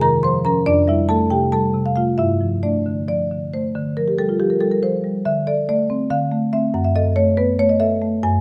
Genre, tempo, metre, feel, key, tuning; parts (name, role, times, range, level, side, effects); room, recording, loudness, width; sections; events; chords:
classical, contemporary piece for solo marimba; 280 BPM (eighths); 7/8; straight; D minor; A4 = 441 Hz
marimba with medium mallets; solo; 0.0-8.4 s; F2 to C6; -19 LUFS; equal
moderate recital hall reverb, RT60 1.4 s; close, detailed microphones; -19 LUFS; mono
0.0-3.8 A section; 3.8-8.4 B section
0.0 Ebsus2; 0.7 Fmaj9; 2.2 Gsus2; 3.8 Dm7; 6.7 F#m7